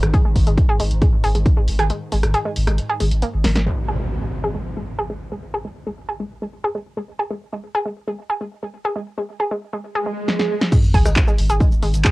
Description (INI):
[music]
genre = driving peak-time techno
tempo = 136 BPM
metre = 4/4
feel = straight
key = unclear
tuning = A4 = 439 Hz
[part]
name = saturated sub bass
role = bass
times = 0.0-3.7, 10.9-12.0 s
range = G#1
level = -18 LUFS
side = equal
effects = overdrive, sidechain pumping, low-pass filter
[part]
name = swarming drone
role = drone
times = 0.0-3.7, 11.4-12.1 s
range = G#2 to D#3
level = -31 LUFS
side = equal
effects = built-in reverb, sidechain pumping, cassette tape
[part]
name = punchy analog drum machine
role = drums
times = 0.0-3.6, 10.3-12.1 s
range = crash cymbal, handclaps, hi-hat, rim click, shaker, snare drum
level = -24 LUFS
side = equal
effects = low-pass filter on hats, cassette tape, low-pass filter on snare, low-pass filter on cymbals, low-pass filter on perc, low-pass filter on room
[part]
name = analog pluck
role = riff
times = 0.1-12.1 s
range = G#3 to G#4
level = -24 LUFS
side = equal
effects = chorus, sidechain pumping, cassette tape, tape echo
[part]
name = electronic kick drum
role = drums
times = 0.1-1.5, 10.7-12.1 s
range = none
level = -16 LUFS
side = equal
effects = cassette tape
[part]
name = impact, swell and sub drop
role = sound effects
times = 3.7-5.4, 10.0-12.1 s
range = none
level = -25 LUFS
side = right 1 dB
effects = none
[sound]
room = light reverb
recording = home recording on cassette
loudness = -18 LUFS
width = side -20 dB against mid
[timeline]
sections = 0.0-3.7 A section; 3.7-10.7 B section; 10.7-12.1 C section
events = break 1.9-3.7; drum fill 3.4, 10.3-10.7; impact 3.7-5.4, 10.7-12.1; filter sweep on drum 3.7-10.7; filter sweep on synth arpeggio sound 3.7-10.7; swell 10.0-10.7; drop 10.7-12.1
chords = 0.0 G#5; 3.7 N.C.; 10.7 G#5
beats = | 0.14 0.58 1.02 1.46 | 1.90 2.34 2.78 3.22 | 3.66 4.11 4.55 4.99 | 5.43 5.87 6.31 6.75 | 7.19 7.63 8.08 8.52 | 8.96 9.40 9.84 10.28 | 10.72 11.16 11.61 12.05